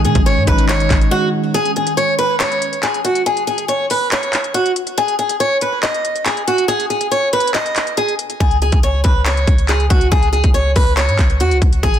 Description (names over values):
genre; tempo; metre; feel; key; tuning
hip hop, trap; 140 BPM; 4/4; half-time; unclear; A4 = 438 Hz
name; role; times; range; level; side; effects
picked swing-style acoustic guitar; melody; 0.0-12.0 s; F#4 to D#5; -17 LUFS; equal; digital delay
mellow tine electric piano; accompaniment; 0.0-1.6 s; D#3 to D#5; -20 LUFS; right 3 dB; auto-pan
ethereal airy pad; sustained chords; 0.0-1.5 s; D#3 to C#4; -26 LUFS; equal; ensemble chorus, built-in reverb
clean 808-style bass; bass; 0.0-1.1, 8.4-12.0 s; G#1 to B2; -16 LUFS; equal; none
trap drum kit; drums; 0.0-12.0 s; handclaps, hi-hat, kick drum; -17 LUFS; equal; vintage 12-bit sampler grit
room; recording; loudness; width
little or no reverb; dense, heavily limited modern master; -13 LUFS; side -10 dB against mid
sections
0.0-1.5 A section; 1.5-12.0 B section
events
break 1.1-1.5, 1.5-8.4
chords
0.0 G#sus4; 1.5 N.C.; 8.4 C#5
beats
0.26 0.69 1.12 | 1.55 1.97 2.40 2.83 | 3.26 3.69 4.12 4.55 | 4.97 5.40 5.83 6.26 | 6.69 7.12 7.55 7.97 | 8.40 8.83 9.26 9.69 | 10.12 10.55 10.97 11.40 | 11.83